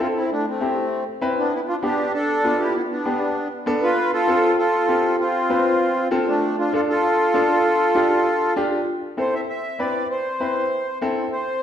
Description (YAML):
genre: latin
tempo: 196 BPM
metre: 4/4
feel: straight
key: A minor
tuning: A4 = 440 Hz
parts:
  - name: accordion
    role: melody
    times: 0.0-11.6 s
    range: A3 to E5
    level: -20 LUFS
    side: equal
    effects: light tremolo tuning
  - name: clear upright piano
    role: accompaniment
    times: 0.0-11.2 s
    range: B3 to B4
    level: -23 LUFS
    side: left 1 dB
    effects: none
room: wet recital hall reverb, RT60 1.5 s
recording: recorded in a church or concert hall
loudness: -18 LUFS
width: side -9 dB against mid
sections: 0.0-8.9 A section; 8.9-11.6 B section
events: none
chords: 0.0 Am; 1.5 G; 4.0 F; 6.4 Dm; 8.9 Am